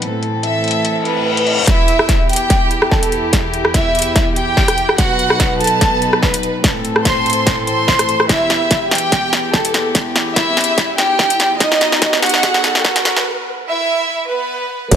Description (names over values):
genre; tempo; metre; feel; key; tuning
heavy wobble dubstep; 145 BPM; 4/4; swing 54% on 16ths, half-time; E harmonic minor; A4 = 440 Hz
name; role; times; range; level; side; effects
warm chamber string section; sustained chords; 0.0-15.0 s; E2 to B4; -21 LUFS; left 1 dB; vintage 12-bit sampler grit, sidechain pumping, low-pass filter
big-room dance drum kit; drums; 0.0-15.0 s; crash cymbal, hi-hat, rim click, snare drum; -17 LUFS; equal; high-pass filter on hats, low-pass filter on hats, high-pass filter on snare, low-pass filter on snare, high-pass filter on cymbals, low-pass filter on cymbals
rich chamber violin section; melody; 0.4-14.8 s; B3 to C6; -16 LUFS; right 1 dB; ping-pong delay
reverse cymbal, riser and impact; sound effects; 1.0-1.7, 10.5-15.0 s; none; -23 LUFS; left 1 dB; none
electronic kick drum; drums; 1.7-15.0 s; none; -17 LUFS; equal; overdrive
formant-sweep wobble bass; bass; 14.9-15.0 s; E1; -9 LUFS; right 1 dB; chorus, overdrive
room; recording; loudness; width
light reverb; high-pass filter; -12 LUFS; side -8 dB against mid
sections
0.0-1.7 A section; 1.7-14.9 B section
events
reverse cymbal 1.0-1.7; build-up 1.7-14.9; drum fill 1.7-13.3; filter sweep 1.7-14.9; riser 10.5-13.3; break 13.3-14.9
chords
0.0 Am; 1.7 Em; 5.0 B; 6.6 Am; 8.3 Em; 11.6 B; 13.3 Bsus4